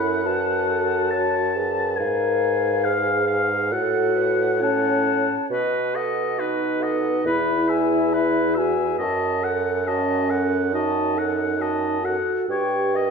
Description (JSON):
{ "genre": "classical, slow romantic movement for wind quintet", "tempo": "69 BPM", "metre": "4/4", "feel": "rubato", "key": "unclear", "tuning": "A4 = 440 Hz", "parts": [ { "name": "mellow concert flute", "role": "melody", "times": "0.0-13.1 s", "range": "D#5 to B5", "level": "-28 LUFS", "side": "left 6 dB", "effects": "none" }, { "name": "warm oboe", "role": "second line", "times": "0.0-13.1 s", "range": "B4 to A5", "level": "-26 LUFS", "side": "left 2 dB", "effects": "none" }, { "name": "mellow French horn", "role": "accompaniment", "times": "0.0-13.1 s", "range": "C#4 to A#4", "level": "-24 LUFS", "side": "left 1 dB", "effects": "none" }, { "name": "warm clarinet", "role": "accompaniment", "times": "0.0-13.1 s", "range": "E4 to C#5", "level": "-29 LUFS", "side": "right 7 dB", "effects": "none" }, { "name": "mellow bassoon", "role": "bass", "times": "0.0-13.1 s", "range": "E2 to B2", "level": "-25 LUFS", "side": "right 3 dB", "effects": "none" } ], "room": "moderate recital hall reverb, RT60 1.4 s", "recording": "minimal, uncompressed stereo recording", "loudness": "-19 LUFS", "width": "side -5 dB against mid", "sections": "0.0-13.1 A section", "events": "none", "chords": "0.0 F#m; 2.0 Fdim/Ab; 3.7 F#m/A; 5.5 B7; 7.3 E; 9.0 D#dim/F#; 12.5 D#7/G" }